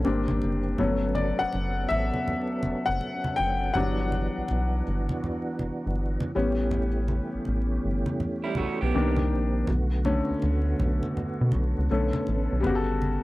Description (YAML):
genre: R&B, neo-soul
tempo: 81 BPM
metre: 4/4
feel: swing 64% on 16ths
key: unclear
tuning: A4 = 441 Hz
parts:
  - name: clear upright piano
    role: accompaniment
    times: 0.0-13.2 s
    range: C#3 to G5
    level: -28 LUFS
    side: left 3 dB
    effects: none
  - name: tonewheel organ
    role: sustained chords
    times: 0.0-12.6 s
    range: D3 to A4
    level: -32 LUFS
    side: right 2 dB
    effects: chorus vibrato, slow rotary speaker
  - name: rubbery square bass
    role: bass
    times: 0.0-13.2 s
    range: F#1 to B2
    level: -27 LUFS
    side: equal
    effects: none
  - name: congas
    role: percussion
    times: 0.0-13.2 s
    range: none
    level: -34 LUFS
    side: right 1 dB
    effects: none
  - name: electric guitar through a small old amp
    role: second line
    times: 8.4-9.2 s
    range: G3 to G4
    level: -30 LUFS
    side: right 5 dB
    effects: spring reverb
room: little or no reverb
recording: dry, close 1970s-style studio recording, vinyl crackle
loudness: -24 LUFS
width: side -18 dB against mid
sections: 0.0-12.6 A section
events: upright piano solo 0.0-12.6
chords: 0.0 G#maj9#11; 0.8 Gmaj9#11; 3.7 Em9/G; 6.3 A7; 8.9 Cm7; 9.7 Bm7; 11.9 Bm9; 12.6 Gmaj9#11